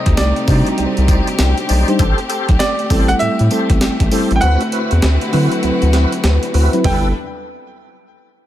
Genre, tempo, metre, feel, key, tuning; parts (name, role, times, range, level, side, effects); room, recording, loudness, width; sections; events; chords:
R&B, new jack swing; 99 BPM; 4/4; swing 63% on 16ths; G major; A4 = 441 Hz
bright grand piano; melody; 0.0-7.1 s; D5 to G5; -22 LUFS; right 2 dB; ping-pong delay
mellow FM electric piano; accompaniment; 0.0-7.1 s; F#3 to D5; -19 LUFS; equal; chorus
clear studio string section; sustained chords; 0.0-7.1 s; C3 to B4; -22 LUFS; left 2 dB
tonewheel organ; stabs; 0.0-7.1 s; C4 to D5; -24 LUFS; left 1 dB; chorus vibrato, fast rotary speaker
round analog bass; bass; 0.1-7.1 s; G1 to D3; -15 LUFS; equal
breakbeat sampler-style drum kit; drums; 0.1-7.0 s; hi-hat, kick drum, snare drum, tambourine, toms; -18 LUFS; equal; gated reverb
little or no reverb; -12 LUFS; side -12 dB against mid
0.0-6.8 A section; 6.8-8.5 B section
kick muted 4.4-6.8
0.0 Cmadd9; 2.0 Am7; 4.4 D13; 6.8 G69